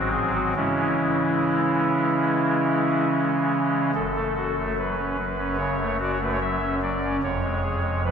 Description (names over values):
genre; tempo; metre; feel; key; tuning
classical, chorale-style piece for pipe organ; 73 BPM; 4/4; straight; C# minor, F# minor from 4.0 s; A4 = 441 Hz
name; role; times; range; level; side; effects
pipe organ, soft reed; solo; 0.0-8.1 s; E#1 to E5; -21 LUFS; equal; none
room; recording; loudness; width
wet church reverb, RT60 2.4 s; heard from further back in the room; -21 LUFS; side -7 dB against mid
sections
0.0-4.0 A section; 4.0-8.1 B section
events
none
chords
0.0 G#7; 0.6 C#m; 4.0 F#m; 7.2 C#/E#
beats
| 0.57 1.42 2.27 3.12 | 3.96 4.78 5.59 6.41 | 7.22 8.04